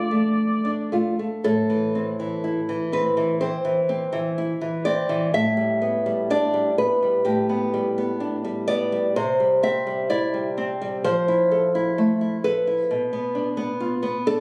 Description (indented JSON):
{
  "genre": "romantic duo for oboe and classical guitar",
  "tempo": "63 BPM",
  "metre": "4/4",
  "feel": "uneven beats, rubato",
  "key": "A minor",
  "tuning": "A4 = 440 Hz",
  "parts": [
    { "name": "warm oboe", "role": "melody", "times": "0.0-0.9 s", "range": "D5", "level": "-32 LUFS", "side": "equal", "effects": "none" },
    { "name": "nylon-string guitar", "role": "accompaniment", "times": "0.0-14.4 s", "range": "A2 to E5", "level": "-23 LUFS", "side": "equal", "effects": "none" }
  ],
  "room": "light reverb",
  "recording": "recorded on a phone in the room, studio reverb, compression",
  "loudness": "-23 LUFS",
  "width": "mono",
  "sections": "0.0-1.4 A section; 1.4-14.4 B section",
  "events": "none",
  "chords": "0.0 Dm; 1.4 Am; 5.3 G/A; 9.2 C; 11.0 Fmaj7; 12.9 Bdim"
}